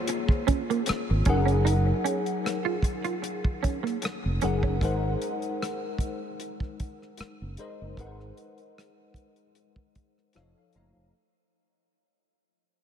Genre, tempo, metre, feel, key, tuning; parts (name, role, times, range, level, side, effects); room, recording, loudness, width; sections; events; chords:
R&B, neo-soul; 76 BPM; 4/4; swing 54% on 16ths; A4 = 440 Hz
tine electric piano; accompaniment; 0.0-11.1 s; F3 to Bb5; -31 LUFS; left 3 dB; ensemble chorus
semi-hollow electric guitar; second line; 0.1-4.8 s; Bb3 to F4; -32 LUFS; right 8 dB; ensemble chorus, ping-pong delay
warm soul drum kit; drums; 0.1-10.9 s; hi-hat, kick drum, rim click; -29 LUFS; equal
fingered electric bass; bass; 0.9-11.1 s; F1 to Ab1; -26 LUFS; right 1 dB
light reverb, small room ambience; -25 LUFS; side -9 dB against mid
0.0-11.1 A section
fade-out 0.0-11.1; tine electric piano fill 9.9-11.1
0.0 Bbm9; 1.3 Gb69; 4.8 Ab9; 10.3 F7b13